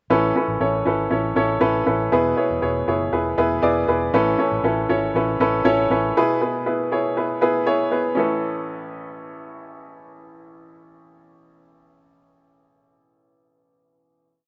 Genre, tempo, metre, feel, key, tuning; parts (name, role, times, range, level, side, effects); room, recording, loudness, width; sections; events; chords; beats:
piano-driven pop; 119 BPM; 4/4; straight; A major; A4 = 442 Hz
clear upright piano; accompaniment; 0.1-14.5 s; A1 to D5; -21 LUFS; equal; slapback echo
vintage muted fingered electric bass; bass; 0.1-6.1 s; E1 to A1; -31 LUFS; equal
little or no reverb; recorded outdoors, with no room sound, nothing above 7.8 kHz; -21 LUFS; mono
0.1-8.2 verse; 8.2-12.2 final chord
0.1 Aadd9; 2.1 E; 4.1 Aadd9; 6.2 E; 8.2 Aadd9
| 0.10 0.60 1.11 1.61 | 2.12 2.62 3.13 3.63 | 4.14 4.64 5.14 5.65 | 6.15 6.66 7.16 7.67 | 8.17 8.67 9.18 9.68 | 10.18 10.69 11.19 11.70